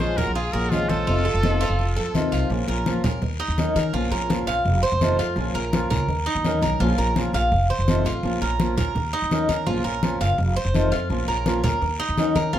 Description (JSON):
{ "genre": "latin, Cuban son and guajira", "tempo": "168 BPM", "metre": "4/4", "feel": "straight", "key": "Bb harmonic minor", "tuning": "A4 = 441 Hz", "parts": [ { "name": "bright trumpet", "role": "melody", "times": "0.0-2.1 s", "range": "F4 to C5", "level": "-27 LUFS", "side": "right 2 dB", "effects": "none" }, { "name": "rich studio violin section", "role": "second line", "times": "0.0-2.1 s", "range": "Db4 to Ab4", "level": "-36 LUFS", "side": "right 1 dB", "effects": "none" }, { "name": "fingerpicked swing-style acoustic guitar", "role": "accompaniment", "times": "0.0-12.6 s", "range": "C3 to Bb4", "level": "-26 LUFS", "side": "left 2 dB", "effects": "none" }, { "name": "Cuban tres", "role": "arpeggios", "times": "0.0-12.6 s", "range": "Eb4 to F5", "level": "-26 LUFS", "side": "right 2 dB", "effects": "none" }, { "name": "upright bass", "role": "bass", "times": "0.0-12.6 s", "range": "F1 to Eb3", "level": "-25 LUFS", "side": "equal", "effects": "none" }, { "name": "congas", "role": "percussion", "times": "0.0-12.6 s", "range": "none", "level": "-26 LUFS", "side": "left 1 dB", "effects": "none" }, { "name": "guiro", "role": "percussion", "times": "0.0-12.6 s", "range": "none", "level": "-37 LUFS", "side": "left 5 dB", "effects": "none" } ], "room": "moderate studio reverb, RT60 0.5 s", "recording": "none", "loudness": "-20 LUFS", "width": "side -11 dB against mid", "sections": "0.0-2.5 A section; 2.5-12.6 B section", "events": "none", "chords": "0.0 Bbm7; 1.1 F7; 2.5 Bbm; 3.2 Ebm7; 3.9 Bbm; 4.7 F7; 5.4 Bbm; 6.1 Ebm7; 6.8 Bbm; 7.5 F7; 8.2 Bbm; 9.0 Ebm7; 9.7 Bbm; 10.4 F7; 11.1 Bbm; 11.8 Ebm7" }